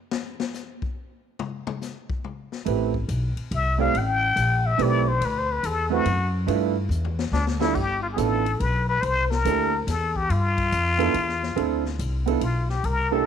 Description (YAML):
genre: jazz, small-group swing and bop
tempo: 141 BPM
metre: 3/4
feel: swing 66% on 8ths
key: G mixolydian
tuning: A4 = 435 Hz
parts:
  - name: swinging big-band drum kit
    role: drums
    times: 0.1-13.0 s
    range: crash cymbal, hi-hat, kick drum, ride cymbal, snare drum, toms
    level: -34 LUFS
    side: left 5 dB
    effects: none
  - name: warm upright piano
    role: accompaniment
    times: 2.7-13.3 s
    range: G2 to D5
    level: -26 LUFS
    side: right 15 dB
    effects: none
  - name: upright bass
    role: bass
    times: 2.7-13.2 s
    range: G1 to G2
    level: -25 LUFS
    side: left 1 dB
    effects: none
  - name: trumpet with plunger mute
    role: melody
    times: 3.6-13.3 s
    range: D4 to G5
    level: -24 LUFS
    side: left 4 dB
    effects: none
room: light reverb, small room ambience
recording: 1960s-style stereo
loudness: -22 LUFS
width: side -8 dB against mid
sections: 0.0-7.7 A section; 7.7-13.3 B section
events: muted trumpet solo 0.0-7.7; drum solo 0.0-2.7; drum fill 6.9-7.7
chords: 0.0 N.C.; 2.7 Am7; 5.2 D69; 6.5 G13; 7.3 Dsus2; 7.7 G13; 9.0 C13; 10.3 G7(no3); 11.6 Dm7; 12.4 G7